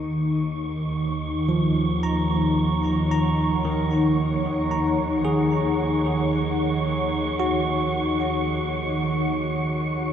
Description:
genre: ambient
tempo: 56 BPM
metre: 4/4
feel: straight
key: Eb minor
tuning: A4 = 438 Hz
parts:
  - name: warm analog pad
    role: sustained chords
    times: 0.0-10.1 s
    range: Eb3 to Bb5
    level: -24 LUFS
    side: equal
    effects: chorus
  - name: dark chamber double bass section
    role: bass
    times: 0.0-10.1 s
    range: Eb2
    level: -31 LUFS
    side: equal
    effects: tube saturation
  - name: wind-like tuned noise texture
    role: texture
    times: 0.0-10.1 s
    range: Db6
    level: -31 LUFS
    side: right 4 dB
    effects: built-in reverb, shimmer reverb
  - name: bell-like tine electric piano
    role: arpeggios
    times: 1.5-10.1 s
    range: Eb3 to Bb5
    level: -25 LUFS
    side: right 1 dB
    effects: medium stereo tremolo, diffuse ambient delay
room: wet cathedral reverb, RT60 6.7 s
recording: dark, warm production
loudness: -21 LUFS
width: side -9 dB against mid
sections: 0.0-10.1 A section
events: fade-out on double bass section 0.0-10.1; filter sweep on analog synth pad 0.0-10.1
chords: 0.0 Ebm7

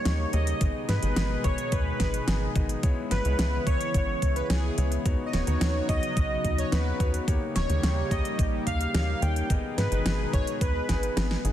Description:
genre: synthwave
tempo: 108 BPM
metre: 4/4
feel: straight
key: unclear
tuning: A4 = 440 Hz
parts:
  - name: soft supersaw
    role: melody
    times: 0.0-11.4 s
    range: G#4 to G5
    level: -32 LUFS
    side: equal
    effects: cassette tape, tape echo
  - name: FM electric piano with soft pad layer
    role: second line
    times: 0.0-11.4 s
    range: G#4 to G5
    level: -39 LUFS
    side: right 1 dB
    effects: none
  - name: warm analog pad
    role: sustained chords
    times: 0.0-11.5 s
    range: B2 to G#4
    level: -34 LUFS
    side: equal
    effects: chorus, sidechain pumping
  - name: warm electric grand piano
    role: stabs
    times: 0.0-11.5 s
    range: A#3 to G#5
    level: -36 LUFS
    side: left 3 dB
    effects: tape echo
  - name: tight sequencer bass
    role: bass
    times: 0.1-11.5 s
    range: D#1 to G#2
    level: -27 LUFS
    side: equal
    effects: sidechain pumping
  - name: pop drum kit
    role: drums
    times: 0.1-11.5 s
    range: hi-hat, snare drum, toms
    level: -32 LUFS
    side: equal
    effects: studio reverb
  - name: electronic kick drum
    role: drums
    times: 0.6-11.0 s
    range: none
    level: -27 LUFS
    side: equal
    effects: overdrive, studio reverb
room: light reverb, digital ambience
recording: dense, heavily limited modern master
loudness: -24 LUFS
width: side -12 dB against mid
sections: 0.0-11.5 A section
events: kick drops out 11.2-11.5; drum fill 11.2-11.5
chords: 0.0 D#7; 0.6 G#m; 2.8 C#m7; 5.1 Badd9/D#; 7.3 D#7; 9.5 G#m

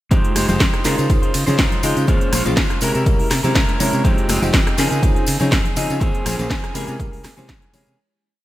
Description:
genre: filtered disco house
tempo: 122 BPM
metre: 4/4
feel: swing 54% on 16ths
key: F minor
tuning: A4 = 441 Hz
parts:
  - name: bell-like tine electric piano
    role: accompaniment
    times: 0.1-8.0 s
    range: Ab3 to Eb5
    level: -24 LUFS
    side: equal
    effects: phaser, sidechain pumping
  - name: clean electric guitar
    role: riff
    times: 0.1-8.0 s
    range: E3 to C5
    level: -24 LUFS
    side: equal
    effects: sidechain pumping
  - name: growling fingered electric bass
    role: bass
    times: 0.1-7.9 s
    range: F1 to Db3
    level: -23 LUFS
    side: equal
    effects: overdrive, sidechain pumping
  - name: electronic kick drum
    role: drums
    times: 0.1-7.6 s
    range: none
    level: -19 LUFS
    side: equal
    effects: none
  - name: house drum kit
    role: drums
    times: 0.1-8.0 s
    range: hi-hat, ride cymbal, rim click, shaker, snare drum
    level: -22 LUFS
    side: equal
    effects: sidechain pumping on hats, sidechain pumping on perc, sidechain pumping on cymbals
  - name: congas and tambourine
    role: percussion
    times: 0.1-8.0 s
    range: none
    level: -28 LUFS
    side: left 2 dB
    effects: sidechain pumping on perc
room: light reverb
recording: bright 1980s-style digital production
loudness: -15 LUFS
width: side -15 dB against mid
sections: 0.1-8.0 drop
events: drop 0.1-8.0; fade-out 5.4-8.0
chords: 0.1 Fm9; 0.8 Dbmaj9; 2.1 Eb13sus4; 2.8 C7b9b13; 4.0 Fm9; 4.8 Dbmaj9; 6.0 Eb13sus4; 6.8 C7b9b13

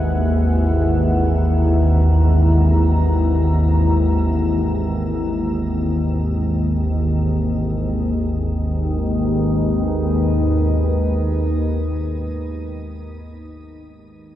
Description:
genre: dark ambient drone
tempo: free time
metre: none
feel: none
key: G# minor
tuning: A4 = 440 Hz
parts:
  - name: deep dark ambient pad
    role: sustained chords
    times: 0.0-12.4 s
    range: G#3 to A#5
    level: -23 LUFS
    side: left 1 dB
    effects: chorus, built-in reverb, shimmer reverb
  - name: organ-like drone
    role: drone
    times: 0.0-12.0 s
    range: G#1 to D#2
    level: -17 LUFS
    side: equal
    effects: ensemble chorus, built-in reverb
room: wet cathedral reverb, RT60 5.6 s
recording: dark, warm production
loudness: -16 LUFS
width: side -12 dB against mid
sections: 0.0-7.9 A section; 7.9-12.3 B section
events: none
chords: 0.0 E/G#; 7.9 G#m

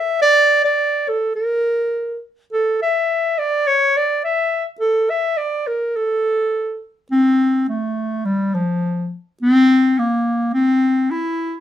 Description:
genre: alpine folk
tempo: 104 BPM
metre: 2/4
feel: rubato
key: unclear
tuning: A4 = 439 Hz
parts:
  - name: warm clarinet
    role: solo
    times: 0.0-11.6 s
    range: F3 to E5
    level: -16 LUFS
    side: equal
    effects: none
room: moderate studio ambience, RT60 0.5 s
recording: band playing live in one room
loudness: -16 LUFS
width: side -11 dB against mid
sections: 0.0-7.1 A section; 7.1-11.6 B section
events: none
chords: none

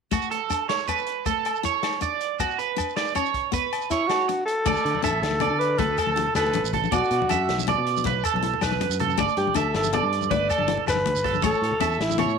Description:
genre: highlife guitar band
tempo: 106 BPM (dotted quarters)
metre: 12/8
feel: straight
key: D major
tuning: A4 = 441 Hz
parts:
  - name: picked steel-string acoustic guitar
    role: accompaniment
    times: 0.1-12.4 s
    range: A3 to E4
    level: -32 LUFS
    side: left 16 dB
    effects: none
  - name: electric guitar at the edge of break-up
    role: arpeggios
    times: 0.1-12.4 s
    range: F#4 to E5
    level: -26 LUFS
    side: right 14 dB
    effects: analog chorus, slapback echo
  - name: vintage drum kit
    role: drums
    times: 0.1-12.3 s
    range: crash cymbal, hi-hat, kick drum, snare drum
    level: -34 LUFS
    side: left 5 dB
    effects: none
  - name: agogo bells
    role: percussion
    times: 0.1-12.4 s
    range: none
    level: -32 LUFS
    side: left 11 dB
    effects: none
  - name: shekere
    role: percussion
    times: 0.1-12.3 s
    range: none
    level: -33 LUFS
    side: right 3 dB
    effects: none
  - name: growling alto saxophone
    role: melody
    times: 3.9-12.4 s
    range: E4 to D5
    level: -25 LUFS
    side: left 1 dB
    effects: none
  - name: fingered electric bass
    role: bass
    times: 4.7-12.4 s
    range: G1 to D3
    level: -29 LUFS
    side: equal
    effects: none
  - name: congas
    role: percussion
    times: 4.7-12.3 s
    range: none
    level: -31 LUFS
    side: left 12 dB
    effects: none
room: light reverb, small room ambience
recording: 1960s-style stereo with parts hard left and right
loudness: -21 LUFS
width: side -5 dB against mid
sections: 0.1-4.7 A section; 4.7-12.4 B section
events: none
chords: 0.1 D5; 2.4 Bmadd9; 4.7 Dsus2; 6.9 Bm; 9.2 Gsus2; 11.4 A

